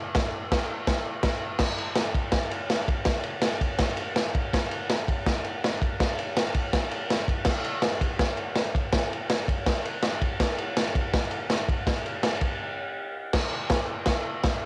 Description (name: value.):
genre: rock.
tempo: 164 BPM.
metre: 4/4.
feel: straight.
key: none.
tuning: none.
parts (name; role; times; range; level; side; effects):
crunchy breakbeat drum kit; drums; 0.1-14.5 s; crash cymbal, kick drum, ride cymbal, snare drum; -27 LUFS; equal; none.
room: light reverb.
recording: home recording on cassette.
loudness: -27 LUFS.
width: mono.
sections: 0.0-1.6 A section; 1.6-13.3 B section; 13.3-14.7 A section.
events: break 12.6-13.3.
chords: none.